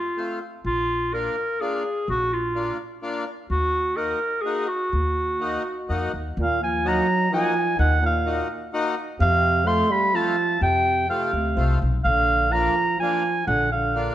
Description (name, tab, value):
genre	alpine folk, alpine dance band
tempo	126 BPM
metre	3/4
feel	straight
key	Eb harmonic minor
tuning	A4 = 437 Hz
part	clear clarinet	melody	0.0-14.1 s	F4 to C6	-23 LUFS	equal	none
part	accordion	accompaniment	0.2-14.1 s	A3 to Gb4	-30 LUFS	left 3 dB	none
part	upright bass	bass	0.6-14.1 s	Bb1 to F2	-25 LUFS	left 1 dB	none
part	mellow euphonium	second line	6.4-14.1 s	Bb2 to A3	-26 LUFS	right 4 dB	none
room	moderate recital hall reverb, RT60 1.4 s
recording	none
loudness	-20 LUFS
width	side -12 dB against mid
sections	0.0-6.4 A section; 6.4-14.1 A section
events	none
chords	0.0 F; 0.7 Bb; 3.5 Ebm; 6.4 Ebmadd9; 9.2 F; 12.1 Bb